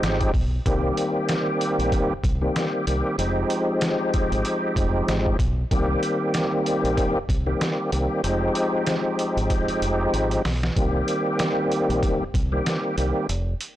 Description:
hip hop, boom-bap hip-hop; 95 BPM; 4/4; swing 57% on 16ths; A4 = 440 Hz
bright tonewheel organ; accompaniment; 0.0-13.3 s; Eb3 to G4; -23 LUFS; equal; chorus vibrato, slow rotary speaker, high-pass filter, low-pass filter
deep dub fingered electric bass; bass; 0.0-13.5 s; F1 to C2; -26 LUFS; equal; tube saturation
trip hop sampler-style drum kit; drums; 0.0-13.8 s; hi-hat, kick drum, snare drum; -26 LUFS; equal
little or no reverb; blown-out, overdriven recording, overdrive; -21 LUFS; side -13 dB against mid
0.0-13.8 A section
drum fill 9.5-10.8; break 13.3-13.8
0.0 Fm9; 0.7 Cm7; 3.2 Fm9; 5.7 Cm7; 8.2 Fm9; 10.8 Cm7
0.03 | 0.66 1.29 1.92 2.55 | 3.19 3.82 4.45 5.08 | 5.71 6.34 6.97 7.61 | 8.24 8.87 9.50 10.13 | 10.76 11.40 12.03 12.66 | 13.29

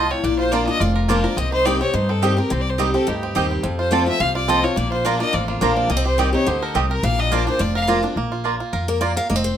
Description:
bluegrass; 212 BPM; 4/4; swing 54% on 8ths; Bb major; A4 = 440 Hz
bluegrass banjo; melody; 0.0-9.6 s; Bb3 to Bb4; -27 LUFS; right 3 dB
clear fiddle; melody; 0.0-7.8 s; F4 to F5; -23 LUFS; left 2 dB
picked steel-string acoustic guitar; accompaniment; 0.0-9.6 s; F2 to F5; -23 LUFS; left 2 dB
mandolin; stabs; 0.0-9.1 s; Bb3 to Bb5; -23 LUFS; right 6 dB
upright bass; bass; 0.0-9.5 s; F1 to G2; -23 LUFS; equal
moderate studio reverb, RT60 0.8 s; -17 LUFS; side -9 dB against mid
0.0-8.2 A section; 8.2-9.6 B section
steel-string acoustic guitar solo 8.2-9.6
0.2 Bb; 1.4 Cm; 3.6 F; 4.8 Bb; 5.9 Cm; 7.0 Bb
| 0.24 0.53 0.81 1.09 | 1.37 1.66 1.94 2.22 | 2.50 2.79 3.07 3.35 | 3.64 3.92 4.20 4.49 | 4.77 5.05 5.33 5.62 | 5.90 6.18 6.47 6.75 | 7.03 7.32 7.60 7.88 | 8.16 8.45 8.73 9.02 | 9.30

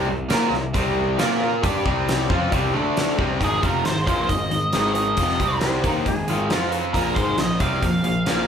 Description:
classic rock; 135 BPM; 4/4; straight; A4 = 439 Hz
overdriven semi-hollow guitar; riff; 0.0-8.5 s; F2 to Bb4; -25 LUFS; right 5 dB
raw garage guitar; riff; 0.0-8.5 s; F2 to Bb4; -25 LUFS; left 5 dB; overdrive
fuzz picked electric bass; bass; 0.0-8.5 s; F1 to Bb2; -27 LUFS; equal; overdrive
gated 80s drum kit; drums; 0.3-8.4 s; hi-hat, kick drum, snare drum; -25 LUFS; equal
octave-fuzz lead guitar; melody; 3.4-8.5 s; Ab4 to F5; -24 LUFS; right 2 dB; wah, distortion
clean lap steel guitar; second line; 5.6-6.7 s; F4 to C5; -28 LUFS; left 1 dB
moderate large studio reverb, RT60 0.8 s; band playing live in one room; -19 LUFS; side -8 dB against mid
0.0-3.4 A section; 3.4-8.5 B section
0.0 C5; 1.2 Bb5; 1.6 C5; 2.7 D5; 3.2 C5; 3.4 Ab5; 5.4 C5; 5.8 Ab5; 6.5 F5; 7.0 Bb5
0.30 0.75 1.19 | 1.63 2.08 2.52 2.96 | 3.41 3.85 4.30 4.74 | 5.18 5.63 6.07 6.52 | 6.96 7.40 7.85 8.29

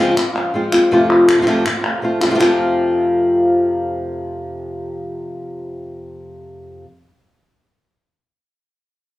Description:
flamenco; 162 BPM; 4/4; straight; F major; A4 = 440 Hz
flamenco guitar; melody; 0.0-6.9 s; F2 to F4; -16 LUFS; left 1 dB
flamenco guitar; stabs; 0.0-6.9 s; F2 to F4; -25 LUFS; right 2 dB
palmas hand claps; percussion; 0.2-2.5 s; -22 LUFS; left 1 dB
small room ambience; home recording on cassette, small room reverb; -13 LUFS; side -16 dB against mid
0.0-2.4 A section; 2.4-5.4 B section
0.0 Dbmaj7; 0.9 F
0.18 0.55 | 0.92 1.29 1.67 2.04 | 2.41 2.78 3.15 3.52 | 3.89 4.27 4.64 5.01

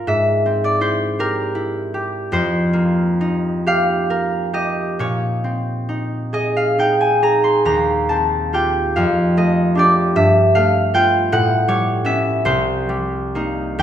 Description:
classical, solo harp piece; 42-55 BPM (dotted quarters); 6/8; rubato; A4 = 440 Hz
concert harp; solo; 0.0-13.8 s; C2 to C6; -15 LUFS; equal
wet recital hall reverb, RT60 1.3 s; minimal, uncompressed stereo recording; -15 LUFS; side -10 dB against mid
0.0-13.8 A section
0.1 C9/Ab; 2.3 F9sus4; 5.0 Bbm11; 7.6 Eb13; 8.9 F13; 10.1 G13; 11.3 A13; 12.5 Cm7
| 0.07 1.18 | 2.30 3.64 | 4.97 6.31 | 7.65 8.94 | 10.14 11.31 | 12.46 13.79

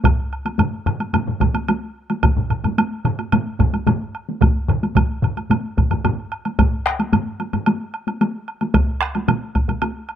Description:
japanese traditional, taiko drum ensemble; 110 BPM; 4/4; straight
solo taiko drums; percussion; 0.0-9.7 s; -20 LUFS; equal
taiko ensemble; percussion; 0.0-9.9 s; -21 LUFS; equal
taiko ensemble; percussion; 0.0-7.7 s; -23 LUFS; left 2 dB
taiko ensemble; percussion; 0.0-9.8 s; -23 LUFS; right 3 dB
woodblock; percussion; 0.1-10.2 s; -26 LUFS; right 3 dB
little or no reverb; close, detailed microphones; -18 LUFS; side -9 dB against mid
0.0-6.6 A section; 6.6-10.2 B section
| 0.05 0.59 1.14 1.69 | 2.23 2.78 3.33 3.87 | 4.41 4.96 5.50 6.04 | 6.58 7.13 7.67 8.21 | 8.75 9.29 9.82

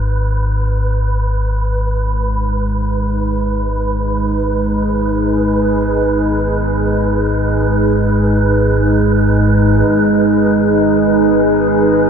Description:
dark ambient drone; free time; G# minor; A4 = 440 Hz
deep rumbling drone; drone; 0.0-12.1 s; G#1 to G#2; -17 LUFS; equal; built-in reverb
wind-like tuned noise texture; texture; 0.0-12.1 s; B4; -20 LUFS; right 2 dB; built-in reverb
deep dark ambient pad; sustained chords; 2.1-12.1 s; G#3 to B4; -14 LUFS; right 1 dB; chorus, built-in reverb
wet huge ambient reverb, RT60 7.2 s; nothing above 10.6 kHz; -12 LUFS; side -7 dB against mid
0.0-9.9 A section; 9.9-12.1 B section
fade-in on synth texture 0.0-9.9; filter sweep on synth drone 0.0-9.9
0.0 G#m
free time

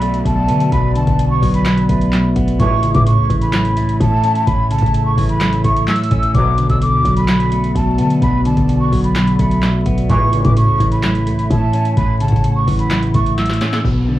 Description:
hip hop, trap; 128 BPM; 4/4; half-time; A4 = 440 Hz
breathy jazz flute; melody; 0.0-13.8 s; A5 to E6; -20 LUFS; right 1 dB; low-pass filter, cassette tape, analog delay
clean electric guitar; accompaniment; 0.0-14.2 s; A2 to C#4; -16 LUFS; equal; low-pass filter, cassette tape
warbly tape-like pad; sustained chords; 0.0-13.8 s; A3 to F#5; -27 LUFS; equal; chorus, built-in reverb, cassette tape
warm 808-style bass; bass; 0.0-14.2 s; A1 to D3; -20 LUFS; equal
booming analog drum machine; drums; 0.0-14.0 s; handclaps, hi-hat, kick drum, snare drum; -19 LUFS; equal
downlifter; sound effects; 0.0-2.6, 13.8-14.2 s; -35 LUFS; equal
warm brass ensemble; stabs; 2.6-3.0, 6.3-6.8, 10.1-10.5 s; C#2 to F#3; -22 LUFS; right 2 dB; cassette tape
light reverb; home recording on cassette, vinyl crackle, studio reverb; -12 LUFS; side -14 dB against mid
0.0-13.8 A section
drum fill 13.4-13.8; hi-hats muted 13.8-14.2
0.0 Bm7; 2.6 A; 6.3 Bm7; 10.1 A
0.25 | 0.72 1.19 1.66 2.13 | 2.60 3.06 3.53 4.00 | 4.47 4.94 5.41 5.88 | 6.35 6.82 7.28 7.75 | 8.22 8.69 9.16 9.63 | 10.10 10.56 11.03 11.50 | 11.97 12.44 12.91 13.38 | 13.85

